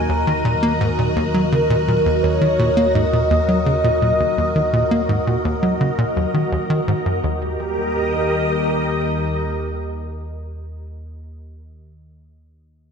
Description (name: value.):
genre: ambient.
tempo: 84 BPM.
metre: 4/4.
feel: straight.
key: Eb minor.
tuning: A4 = 440 Hz.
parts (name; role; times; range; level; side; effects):
mellow horn-like synth lead; melody; 0.0-6.5 s; Bb4 to Bb5; -22 LUFS; left 1 dB; chorus, analog delay.
string machine, full ensemble; sustained chords; 0.0-10.9 s; Gb4 to Eb5; -22 LUFS; equal; ensemble chorus.
tight sequencer bass; riff; 0.0-7.6 s; Eb2 to Bb3; -20 LUFS; equal; vintage 12-bit sampler grit, analog delay.
analog drone; bass; 0.0-9.3 s; Eb2; -26 LUFS; equal; chorus.
room: wet concert hall reverb, RT60 1.9 s.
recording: dark, warm production.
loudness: -16 LUFS.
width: side -6 dB against mid.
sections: 0.0-7.2 A section; 7.2-10.1 B section.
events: none.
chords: 0.0 Ebm; 7.2 Eb.